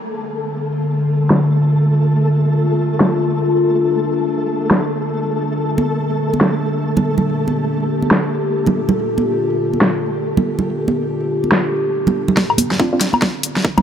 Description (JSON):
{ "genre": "deep dubstep", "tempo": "141 BPM", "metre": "4/4", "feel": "swing 62% on 16ths, half-time", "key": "D minor", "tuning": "A4 = 440 Hz", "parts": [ { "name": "overtone-sweeping drone", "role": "sustained chords", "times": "0.4-13.8 s", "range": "Bb2 to G4", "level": "-18 LUFS", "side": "left 1 dB", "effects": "chorus, built-in reverb" }, { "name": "flickering grainy texture", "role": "texture", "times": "0.0-12.4 s", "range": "A3 to A4", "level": "-24 LUFS", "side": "equal", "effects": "built-in reverb" }, { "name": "dubstep drum kit", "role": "drums", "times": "1.3-13.8 s", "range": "hi-hat, snare drum, woodblock", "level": "-17 LUFS", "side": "equal", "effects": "low-pass filter on perc, low-pass filter on hats, low-pass filter on snare" }, { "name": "congas", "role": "percussion", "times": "5.8-13.8 s", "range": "none", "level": "-20 LUFS", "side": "right 3 dB", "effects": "dub echo" }, { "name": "electronic kick drum", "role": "drums", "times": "12.4-13.8 s", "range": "none", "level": "-18 LUFS", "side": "equal", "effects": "overdrive, high-pass filter on kick" }, { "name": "filtered dub chord stab", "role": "stabs", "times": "12.8-13.1 s", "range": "C4 to F4", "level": "-22 LUFS", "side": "equal", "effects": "chorus, dub echo" } ], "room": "light reverb, digital ambience", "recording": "none", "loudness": "-15 LUFS", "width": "side -8 dB against mid", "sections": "0.0-12.4 A section; 12.4-13.8 B section", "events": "build-up 12.4-13.8; drum fill 12.4-13.8; filter sweep on synth drone 12.4-13.8", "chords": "0.0 Dm7; 5.6 Gm; 12.4 Dm7" }